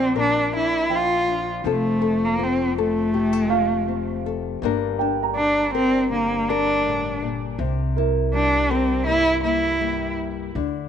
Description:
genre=acoustic folk-pop ballad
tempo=81 BPM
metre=4/4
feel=straight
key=G dorian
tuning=A4 = 439 Hz
part: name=warm cello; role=melody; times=0.0-10.1 s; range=A3 to F4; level=-21 LUFS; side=right 1 dB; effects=tape echo
part: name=nylon-string guitar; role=accompaniment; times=0.0-10.9 s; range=G2 to Bb4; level=-26 LUFS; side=left 11 dB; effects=none
part: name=upright bass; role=bass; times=0.0-10.9 s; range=F1 to D2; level=-30 LUFS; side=right 1 dB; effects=none
part: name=felt-muted upright piano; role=arpeggios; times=0.9-8.7 s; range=Bb4 to Bb5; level=-26 LUFS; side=right 13 dB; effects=none
room=light reverb, small room ambience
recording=1960s-style stereo with parts hard left and right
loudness=-19 LUFS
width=side -8 dB against mid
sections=0.0-4.6 A section; 4.6-10.9 B section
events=none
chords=0.0 Bb; 1.6 F; 4.6 Gm; 7.6 C7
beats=0.15 0.90 | 1.64 2.38 3.13 3.87 | 4.62 5.36 6.10 6.84 | 7.59 8.33 9.07 9.81 | 10.55

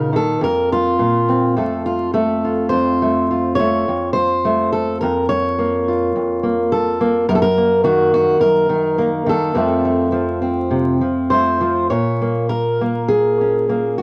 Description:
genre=folk, solo fingerstyle acoustic guitar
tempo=104 BPM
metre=4/4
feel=rubato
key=unclear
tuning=A4 = 440 Hz
part: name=fingerpicked steel-string acoustic guitar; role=solo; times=0.0-14.0 s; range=F2 to Db5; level=-17 LUFS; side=equal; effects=none
room=moderate small room reverb, RT60 0.5 s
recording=vinyl crackle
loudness=-17 LUFS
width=mono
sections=0.0-11.9 A section; 11.9-14.0 B section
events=none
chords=0.4 Fsus4; 1.6 F; 5.0 Bbm/F; 7.3 Ebm/Gb; 9.6 F; 11.9 Bbm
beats=| 0.42 0.99 1.56 2.14 | 2.72 3.30 3.88 4.46 | 5.03 5.60 6.16 6.73 | 7.29 7.84 8.41 8.99 | 9.56 10.13 10.71 11.30 | 11.90 12.50 13.10 13.69

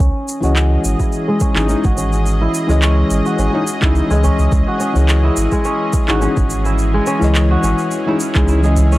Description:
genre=organic downtempo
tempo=106 BPM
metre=4/4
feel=swing 54% on 16ths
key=C# minor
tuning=A4 = 438 Hz
part: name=bowed-like drone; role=sustained chords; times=0.3-9.0 s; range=E3 to D#5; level=-24 LUFS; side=equal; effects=built-in reverb, vintage 12-bit sampler grit, sidechain pumping
part: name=kora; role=arpeggios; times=0.0-9.0 s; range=G#3 to G#4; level=-20 LUFS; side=equal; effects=low-pass filter, tape echo
part: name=warm sub bass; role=bass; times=0.0-9.0 s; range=G#1 to C#2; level=-15 LUFS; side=equal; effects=none
part: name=electronic kick drum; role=drums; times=0.0-8.5 s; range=none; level=-17 LUFS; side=equal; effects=overdrive
part: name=electronic shaker and handclaps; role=drums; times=0.3-9.0 s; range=none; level=-24 LUFS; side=right 1 dB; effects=overdrive
part: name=felt-muted upright piano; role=accompaniment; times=0.4-9.0 s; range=E3 to D#5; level=-20 LUFS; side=left 3 dB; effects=sidechain pumping, tape echo
part: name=udu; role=percussion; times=0.4-0.5, 4.2-5.1, 8.8-8.9 s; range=none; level=-20 LUFS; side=equal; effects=none
room=small room reverb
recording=dry, gritty hardware recording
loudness=-13 LUFS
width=side -17 dB against mid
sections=0.0-9.0 A section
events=filter sweep on kora 0.0-9.0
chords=0.0 C#madd9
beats=| 0.00 0.56 1.13 1.69 | 2.26 2.83 3.39 3.96 | 4.52 5.09 5.66 6.22 | 6.79 7.35 7.92 8.49

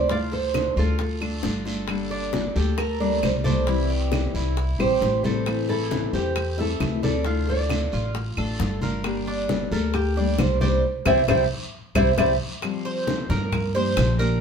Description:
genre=latin, Cuban son and guajira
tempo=134 BPM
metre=4/4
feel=straight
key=unclear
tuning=A4 = 440 Hz
part: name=nylon-string guitar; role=melody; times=0.0-12.3 s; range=G4 to E5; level=-25 LUFS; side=right 2 dB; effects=none
part: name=nylon-string guitar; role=accompaniment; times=0.0-14.4 s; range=C3 to A4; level=-29 LUFS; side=left 5 dB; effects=none
part: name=Cuban tres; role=arpeggios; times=0.0-14.4 s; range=D4 to E5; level=-30 LUFS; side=right 3 dB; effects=none
part: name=upright bass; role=bass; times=0.0-14.4 s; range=G1 to G2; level=-26 LUFS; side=equal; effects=none
part: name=bongos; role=percussion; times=0.1-14.4 s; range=none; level=-32 LUFS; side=left 5 dB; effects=none
part: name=congas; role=percussion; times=0.1-14.4 s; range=none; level=-30 LUFS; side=equal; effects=none
part: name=guiro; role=percussion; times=0.1-14.4 s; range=none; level=-38 LUFS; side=right 1 dB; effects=none
part: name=claves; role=percussion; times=0.5-14.2 s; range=none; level=-34 LUFS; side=right 2 dB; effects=none
room=moderate studio reverb, RT60 0.9 s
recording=band playing live in one room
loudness=-21 LUFS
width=side -6 dB against mid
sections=0.0-12.6 A section; 12.6-14.4 B section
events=band accent 10.8-12.6; drum fill 11.7-12.6; Cuban tres solo 12.6-14.4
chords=0.1 Dm; 1.9 Gmadd9; 3.7 C; 5.5 Am; 7.3 Dm; 9.0 Gm; 10.8 Cadd9; 12.6 Fsus2; 13.5 Gm7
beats=| 0.10 0.54 0.99 1.44 | 1.89 2.33 2.78 3.23 | 3.68 4.12 4.57 5.02 | 5.47 5.92 6.36 6.81 | 7.26 7.71 8.15 8.60 | 9.05 9.50 9.94 10.39 | 10.84 11.29 11.73 12.18 | 12.63 13.08 13.53 13.97

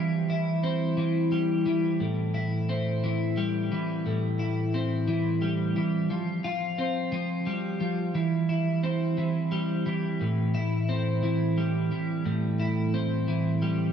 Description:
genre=rock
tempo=59 BPM (dotted quarters)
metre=6/8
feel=straight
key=A minor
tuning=A4 = 440 Hz
part: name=twelve-string electric guitar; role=solo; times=0.0-13.9 s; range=A2 to F4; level=-25 LUFS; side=equal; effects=lush chorus, ping-pong delay
room=moderate lush hall reverb, RT60 2.6 s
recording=dreamy mix soaked in reverb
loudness=-25 LUFS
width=side -8 dB against mid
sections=0.0-13.9 A section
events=none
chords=0.0 C/E; 2.0 Am7; 6.1 Fsus2; 8.2 C/E; 10.2 Am7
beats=0.98 | 2.01 3.03 | 4.05 5.08 | 6.10 7.13 | 8.15 9.18 | 10.20 11.22 | 12.25 13.28

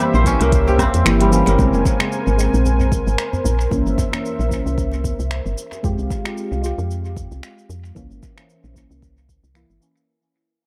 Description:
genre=organic downtempo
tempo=113 BPM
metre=4/4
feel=swing 56% on 16ths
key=C phrygian dominant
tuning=A4 = 442 Hz
part: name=deep mellow chord stab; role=accompaniment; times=0.0-10.1 s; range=Db3 to G4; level=-26 LUFS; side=equal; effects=chorus, vintage 12-bit sampler grit, sidechain pumping, dub echo
part: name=warm analog pad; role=sustained chords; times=0.0-10.1 s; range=Ab3 to Ab5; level=-29 LUFS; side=equal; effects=chorus, sidechain pumping
part: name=kora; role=arpeggios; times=0.0-3.4 s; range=G3 to C5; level=-24 LUFS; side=equal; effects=dub echo
part: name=organic electronic drum kit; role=drums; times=0.0-10.1 s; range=finger snaps, hi-hat, shaker, woodblock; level=-29 LUFS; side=equal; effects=dub echo
part: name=woody FM bass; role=bass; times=0.1-9.8 s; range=F1 to F2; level=-22 LUFS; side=equal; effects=sidechain pumping
part: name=electronic kick drum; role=drums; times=0.3-9.4 s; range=none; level=-25 LUFS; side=equal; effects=none
part: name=djembe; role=percussion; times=0.7-5.8 s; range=none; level=-31 LUFS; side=equal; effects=none
room=moderate spring reverb, RT60 2.5 s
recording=echo-heavy mix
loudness=-18 LUFS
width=mono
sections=0.0-1.6 A section; 1.6-10.1 B section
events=fade-out 1.6-10.1; filter sweep on analog synth pad 1.6-10.1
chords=0.0 C7b9; 1.6 Bbm9; 3.7 C7b9; 5.8 Fmadd9; 8.0 C7b9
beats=0.53 1.06 | 1.59 2.12 2.65 3.18 | 3.71 4.24 4.77 5.30 | 5.83 6.37 6.90 7.43 | 7.96 8.49 9.02 9.55

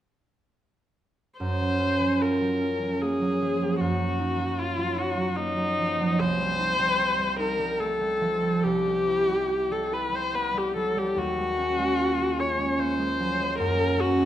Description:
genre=classical, impressionist duo for viola and harp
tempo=70-78 BPM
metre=3/4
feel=rubato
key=Gb lydian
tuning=A4 = 438 Hz
part: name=rich viola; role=melody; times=1.4-14.3 s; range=Eb4 to Db5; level=-25 LUFS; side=left 2 dB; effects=none
part: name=concert harp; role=accompaniment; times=1.4-14.3 s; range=C2 to G4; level=-27 LUFS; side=right 2 dB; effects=none
room=wet recital hall reverb, RT60 1.2 s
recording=none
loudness=-23 LUFS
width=side -11 dB against mid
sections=1.4-14.3 A section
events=none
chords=1.4 Gbmaj7; 3.8 Ebmadd9/Gb; 6.2 Cm6; 8.7 Cmaj7; 11.2 Ebm11; 13.6 Gbadd9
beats=| 1.40 2.22 3.02 | 3.81 4.59 5.37 | 6.20 7.00 7.81 | 8.65 9.51 10.35 | 11.19 12.01 12.80 | 13.60

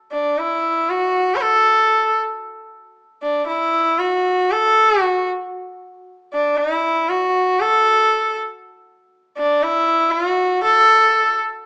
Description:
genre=indian classical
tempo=free time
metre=none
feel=none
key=unclear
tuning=A4 = 440 Hz
part: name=clear sarangi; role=solo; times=0.1-11.4 s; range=D4 to C#5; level=-14 LUFS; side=equal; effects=none
room=moderate large studio reverb, RT60 0.9 s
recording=band playing live in one room, small speaker sound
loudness=-14 LUFS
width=side -32 dB against mid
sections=0.0-7.6 A section; 7.6-11.7 B section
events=none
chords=none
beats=free time

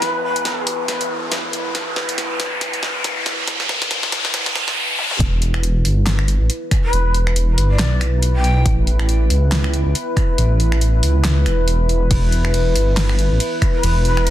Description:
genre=deep dubstep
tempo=139 BPM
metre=4/4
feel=swing 57% on 16ths, half-time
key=E minor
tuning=A4 = 441 Hz
part: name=breathy shakuhachi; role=melody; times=0.0-0.7, 6.8-8.7, 13.7-14.3 s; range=B4 to G5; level=-26 LUFS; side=left 2 dB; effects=dub echo
part: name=deep dark ambient pad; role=sustained chords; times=0.0-14.3 s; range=E4 to B4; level=-25 LUFS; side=equal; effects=chorus, built-in reverb
part: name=deep house drum kit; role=drums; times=0.0-14.3 s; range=finger snaps, handclaps, hi-hat, ride cymbal, snare drum, toms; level=-23 LUFS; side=equal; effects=high-pass filter on hats, soft clipping on snare, high-pass filter on snare, high-pass filter on toms, high-pass filter on cymbals, high-pass filter on room
part: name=riser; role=sound effects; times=0.0-5.2 s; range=none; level=-22 LUFS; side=equal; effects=none
part: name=dark detuned saw bass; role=bass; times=5.2-14.3 s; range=E1 to C#2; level=-16 LUFS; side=equal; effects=none
part: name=electronic kick drum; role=drums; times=5.2-13.7 s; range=none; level=-18 LUFS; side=equal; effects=none
room=light reverb, digital ambience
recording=dense, heavily limited modern master, high-pass filter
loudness=-16 LUFS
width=side -13 dB against mid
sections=0.0-5.2 A section; 5.2-14.3 B section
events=build-up 0.0-5.2; drum fill 0.0-4.8, 5.0; riser 0.0-5.2; filter sweep 0.0-5.2; drop 5.2-14.3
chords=0.0 E5; 5.2 Em; 8.7 A; 12.1 Em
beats=| 0.02 0.46 0.89 1.32 | 1.75 2.18 2.61 3.04 | 3.48 3.91 4.34 4.77 | 5.20 5.63 6.07 6.50 | 6.93 7.36 7.79 8.22 | 8.66 9.09 9.52 9.95 | 10.38 10.81 11.25 11.68 | 12.11 12.54 12.97 13.40 | 13.84 14.27

